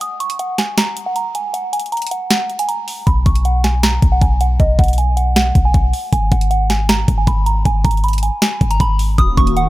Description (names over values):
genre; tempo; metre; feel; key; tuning
hip hop, trap; 157 BPM; 4/4; half-time; unclear; A4 = 439 Hz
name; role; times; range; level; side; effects
soft synth bell; melody; 0.0-9.7 s; Eb5 to Eb6; -20 LUFS; right 2 dB; chorus, low-pass filter, digital delay
trap drum kit; drums; 0.0-9.7 s; hi-hat, kick drum, snare drum; -16 LUFS; equal; none
clean 808-style bass; bass; 3.1-9.7 s; Eb1 to B1; -16 LUFS; equal; none
hollow soft pad; sustained chords; 9.2-9.7 s; Eb3 to Gb4; -19 LUFS; equal; ensemble chorus
room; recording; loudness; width
digital ambience; none; -13 LUFS; side -17 dB against mid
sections
0.0-9.7 A section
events
break 0.0-3.1; filter sweep on synth bell 0.0-9.2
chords
0.0 N.C.; 3.1 B5; 6.1 Abm; 9.2 Ebm7